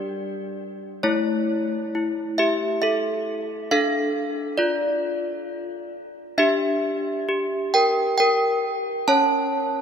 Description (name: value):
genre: classical, tune for handbells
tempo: 67 BPM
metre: 3/4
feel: straight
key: D minor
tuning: A4 = 438 Hz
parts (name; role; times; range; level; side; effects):
- desk bells; solo; 0.0-9.8 s; G3 to A5; -21 LUFS; equal; none
room: wet cathedral reverb, RT60 5.0 s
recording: minimal, uncompressed stereo recording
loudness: -20 LUFS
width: side -7 dB against mid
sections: 0.0-9.8 A section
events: none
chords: 0.0 G5; 1.0 A; 3.7 Dm; 6.4 Em7b5/D; 9.1 A/C#